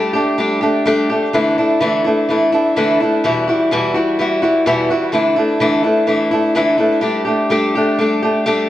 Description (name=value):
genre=rock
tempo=126 BPM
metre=4/4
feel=straight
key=G major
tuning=A4 = 439 Hz
part: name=picked old ladder-braced acoustic guitar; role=solo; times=0.0-8.7 s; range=E2 to G4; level=-13 LUFS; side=equal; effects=tape echo
room=moderate large studio reverb, RT60 1.1 s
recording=dark, warm production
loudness=-13 LUFS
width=side -13 dB against mid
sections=0.0-8.7 A section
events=none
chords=0.0 Gsus2; 1.3 Dsus2; 3.2 Emadd9; 5.1 Dsus2; 7.0 Gsus2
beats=0.38 0.86 | 1.33 1.81 2.28 2.75 | 3.23 3.70 4.18 4.65 | 5.13 5.60 6.08 6.55 | 7.03 7.51 7.98 8.46